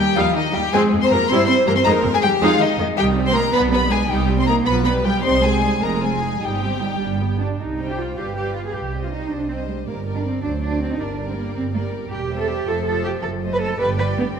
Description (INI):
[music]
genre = quick classical-period movement for string orchestra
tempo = 106 BPM (dotted quarters)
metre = 6/8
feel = straight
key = C minor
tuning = A4 = 440 Hz
[part]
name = warm chamber violin section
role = melody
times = 0.0-14.4 s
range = D5 to C6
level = -25 LUFS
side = left 5 dB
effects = none
[part]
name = warm chamber violin section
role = second line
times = 0.0-14.4 s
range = Eb4 to D5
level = -24 LUFS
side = left 3 dB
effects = none
[part]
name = clear studio viola section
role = accompaniment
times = 0.0-14.4 s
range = C3 to G4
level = -25 LUFS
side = right 2 dB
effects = none
[part]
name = dark chamber cello section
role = bass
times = 0.0-14.4 s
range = Eb3 to B4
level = -23 LUFS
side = right 3 dB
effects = none
[part]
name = rich chamber double bass section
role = bass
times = 0.0-14.4 s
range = E1 to G2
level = -25 LUFS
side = right 3 dB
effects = none
[sound]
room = moderate concert hall reverb, RT60 2.0 s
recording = none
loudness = -17 LUFS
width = side -7 dB against mid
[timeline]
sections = 0.0-7.6 A section; 7.6-14.4 B section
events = none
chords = 0.0 Eb; 0.7 Fm; 1.3 Edim/G; 1.9 Fm7; 3.0 Cm; 3.5 G/B; 4.1 Cm; 4.7 G7/B; 5.2 Cm; 5.8 Fm7; 6.4 Cm/G; 7.0 G; 7.6 Cm; 8.2 G7; 8.7 Cm; 9.9 Gm; 10.4 D7; 11.0 Gm; 12.1 C/E; 12.7 Fmaj7; 13.2 F#dim7; 13.8 G